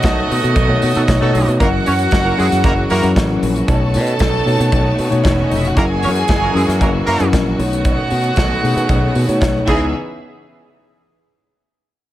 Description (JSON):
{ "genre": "disco", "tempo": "115 BPM", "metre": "4/4", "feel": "straight", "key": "unclear", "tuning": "A4 = 442 Hz", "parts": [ { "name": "warm chamber violin section", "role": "second line", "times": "0.0-9.9 s", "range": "A3 to A5", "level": "-21 LUFS", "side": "right 2 dB", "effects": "none" }, { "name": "mellow tine electric piano", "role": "accompaniment", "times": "0.0-10.0 s", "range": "B2 to C#5", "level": "-19 LUFS", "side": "left 2 dB", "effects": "slow stereo tremolo" }, { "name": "clear symphonic string section", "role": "sustained chords", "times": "0.0-9.9 s", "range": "D#3 to G#4", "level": "-24 LUFS", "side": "equal", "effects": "none" }, { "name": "fingered electric bass", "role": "bass", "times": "0.0-9.9 s", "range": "E1 to B2", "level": "-19 LUFS", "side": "equal", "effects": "none" }, { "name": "modern studio drum kit", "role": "drums", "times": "0.0-9.8 s", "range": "crash cymbal, hi-hat, kick drum, snare drum", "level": "-19 LUFS", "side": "equal", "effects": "none" }, { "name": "cowbell", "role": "percussion", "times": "0.0-9.9 s", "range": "none", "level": "-31 LUFS", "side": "left 1 dB", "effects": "none" }, { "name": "warm horn section", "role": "stabs", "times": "0.9-9.9 s", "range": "E3 to C#5", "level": "-21 LUFS", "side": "right 2 dB", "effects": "none" } ], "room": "light reverb, small room ambience", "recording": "none", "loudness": "-13 LUFS", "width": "side -14 dB against mid", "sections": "0.0-1.6 A section; 1.6-9.9 B section; 9.9-12.0 C section", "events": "none", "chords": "0.0 B9; 1.6 F#7; 3.7 B9; 5.8 F#7; 7.6 B9; 9.7 C#m9; 9.9 N.C." }